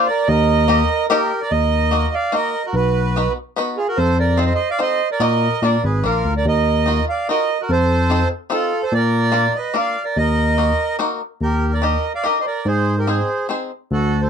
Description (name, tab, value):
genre	musette waltz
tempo	145 BPM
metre	3/4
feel	straight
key	Eb harmonic minor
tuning	A4 = 437 Hz
part	accordion	melody	0.0-14.3 s	Ab4 to F5	-20 LUFS	right 4 dB	none
part	accordion	second line	0.0-14.3 s	F4 to D5	-24 LUFS	right 3 dB	none
part	bluegrass banjo	accompaniment	0.0-13.7 s	Bb3 to Eb5	-21 LUFS	left 4 dB	none
part	barky tine electric piano	bass	0.3-14.3 s	Ab1 to Bb2	-18 LUFS	left 1 dB	overdrive
room	little or no reverb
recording	close, detailed microphones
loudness	-16 LUFS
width	side -7 dB against mid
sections	0.0-1.5 A section; 1.5-11.4 B section; 11.4-14.3 A section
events	none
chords	0.3 Eb; 1.5 Ebm; 2.7 B; 4.0 F7; 5.2 Ebm/Bb; 5.6 Bb; 6.5 Ebmadd9; 7.7 F7; 8.9 Bb; 10.2 Ebm; 11.4 Ebmaj7; 12.7 Ab